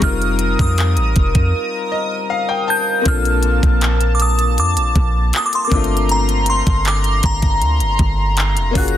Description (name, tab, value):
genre	contemporary R&B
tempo	79 BPM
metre	4/4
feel	straight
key	Bb major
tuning	A4 = 442 Hz
part	glassy synth bell	melody	0.0-9.0 s	Bb5 to G6	-21 LUFS	left 1 dB	chorus, tape echo
part	bright concert grand piano	accompaniment	0.0-9.0 s	G3 to A5	-23 LUFS	left 7 dB	none
part	chorused pulse-width pad	sustained chords	0.0-9.0 s	Bb3 to Eb6	-24 LUFS	right 1 dB	none
part	soft 808-style bass	bass	0.0-9.0 s	F1 to F2	-17 LUFS	equal	none
part	trap drum kit	drums	0.0-9.0 s	handclaps, hi-hat, kick drum	-18 LUFS	equal	none
room	little or no reverb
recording	dense, heavily limited modern master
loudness	-14 LUFS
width	side -11 dB against mid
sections	0.0-3.1 A section; 3.1-9.0 A section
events	break 1.5-3.1; grand piano fill 1.5-3.1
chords	0.0 F7sus4; 3.1 Bbmaj7; 5.7 Gm11